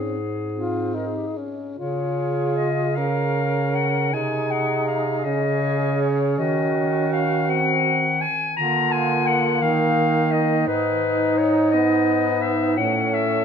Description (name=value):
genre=classical, lyrical piece for single-reed quartet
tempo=47-58 BPM (dotted quarters)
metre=6/8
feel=rubato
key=Db major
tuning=A4 = 444 Hz
part: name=clear clarinet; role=melody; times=0.0-13.4 s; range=G4 to Bb5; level=-24 LUFS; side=left 7 dB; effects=none
part: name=bright alto saxophone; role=second line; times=0.0-13.4 s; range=C4 to Bb4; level=-26 LUFS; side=right 9 dB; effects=none
part: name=mellow tenor saxophone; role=accompaniment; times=0.0-13.4 s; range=A3 to F4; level=-26 LUFS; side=left 3 dB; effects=none
part: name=clear bass clarinet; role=bass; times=0.0-13.4 s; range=G#2 to Eb3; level=-24 LUFS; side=right 2 dB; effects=none
room=wet recital hall reverb, RT60 1.8 s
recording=none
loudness=-19 LUFS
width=side -7 dB against mid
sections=0.0-1.8 A section; 1.8-13.4 B section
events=none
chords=0.0 Ab; 1.8 Db; 4.1 Ab/C; 5.2 Db5; 6.4 Ebm; 8.6 Bb/D; 9.6 Eb5; 10.7 G#m; 12.8 A